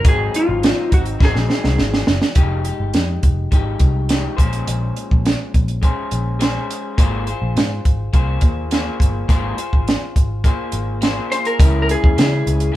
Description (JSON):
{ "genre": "indie pop, bedroom pop", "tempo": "104 BPM", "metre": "4/4", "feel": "straight", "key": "Ab major", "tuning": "A4 = 441 Hz", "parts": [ { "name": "electric slide guitar", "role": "melody", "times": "0.0-2.1, 11.3-12.8 s", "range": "F4 to C5", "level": "-21 LUFS", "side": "left 2 dB", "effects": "none" }, { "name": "electric guitar through a small old amp", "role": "accompaniment", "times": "0.0-12.8 s", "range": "Ab2 to C5", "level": "-25 LUFS", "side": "left 2 dB", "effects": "vibrato effect" }, { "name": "vintage muted picked electric bass", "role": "bass", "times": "0.0-12.7 s", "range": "F1 to Db3", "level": "-21 LUFS", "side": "equal", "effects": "none" }, { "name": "compact cocktail drum kit", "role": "drums", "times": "0.0-12.7 s", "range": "hi-hat, kick drum, snare drum", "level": "-15 LUFS", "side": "equal", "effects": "none" } ], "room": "light reverb", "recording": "band playing live in one room", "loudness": "-15 LUFS", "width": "side -14 dB against mid", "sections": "0.0-2.4 A section; 2.4-11.6 B section; 11.6-12.8 A section", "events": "drum fill 1.2-2.4", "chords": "0.0 Ab7; 2.4 Fm9; 4.4 Bbm9; 7.0 Ab69; 11.6 Dbm" }